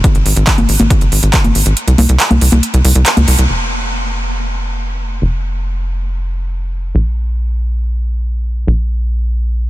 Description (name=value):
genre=uplifting trance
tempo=139 BPM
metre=4/4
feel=straight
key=F minor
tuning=A4 = 440 Hz
part: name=big-room dance drum kit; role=drums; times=0.0-3.5 s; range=congas, handclaps, hi-hat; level=-15 LUFS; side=equal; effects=none
part: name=electronic kick drum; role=drums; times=0.0-1.4 s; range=none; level=-12 LUFS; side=equal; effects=none
part: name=tight sequencer bass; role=bass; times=0.1-9.7 s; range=F1 to Db2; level=-13 LUFS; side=equal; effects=sidechain pumping
room=little or no reverb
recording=dense, heavily limited modern master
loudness=-12 LUFS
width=side -16 dB against mid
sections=0.0-3.5 A section; 3.5-9.7 B section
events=kick drops out 1.8-3.5; band accent 3.1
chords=none